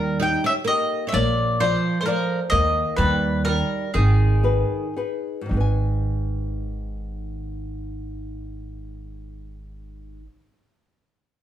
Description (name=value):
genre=italian folk, Italian serenade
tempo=109-130 BPM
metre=3/4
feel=swing 53% on 8ths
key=G# harmonic minor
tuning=A4 = 439 Hz
part: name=mandolin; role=melody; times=0.0-4.9 s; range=G#4 to G5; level=-24 LUFS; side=equal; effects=none
part: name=oud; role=second line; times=0.0-4.9 s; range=D#3 to D#4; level=-26 LUFS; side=right 1 dB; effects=none
part: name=flamenco guitar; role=accompaniment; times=0.0-10.3 s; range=G#2 to G#5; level=-30 LUFS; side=left 4 dB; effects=none
part: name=upright bass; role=bass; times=0.0-10.3 s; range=G#1 to D#2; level=-23 LUFS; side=right 1 dB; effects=none
room=moderate large studio reverb, RT60 0.9 s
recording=band playing live in one room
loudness=-19 LUFS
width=side -11 dB against mid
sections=0.0-5.5 A section; 5.5-8.8 B section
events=slowing down 2.5-5.5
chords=0.0 D#; 1.1 A#; 2.5 D#5; 3.0 D#; 4.0 G#m